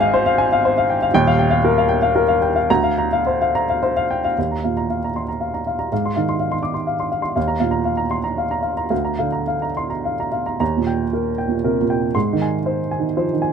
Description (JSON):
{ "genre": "neoclassical minimalist piano", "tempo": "103-125 BPM", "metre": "3/4", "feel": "rubato", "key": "Eb major", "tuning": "A4 = 440 Hz", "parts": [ { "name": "warm upright piano", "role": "solo", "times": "0.0-13.5 s", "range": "Eb1 to D6", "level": "-17 LUFS", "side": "equal", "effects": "none" } ], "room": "little or no reverb", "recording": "close, detailed microphones", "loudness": "-17 LUFS", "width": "side -7 dB against mid", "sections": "0.0-4.4 A section; 4.4-10.6 B section; 10.6-13.5 C section", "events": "none", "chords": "0.0 Ab6; 1.1 Ebadd9; 2.7 Bbadd9/D; 4.4 Ebsus2; 5.9 Ab6; 7.4 Ebsus2; 8.9 Bbadd9/D; 10.6 Eb; 12.1 Ab6" }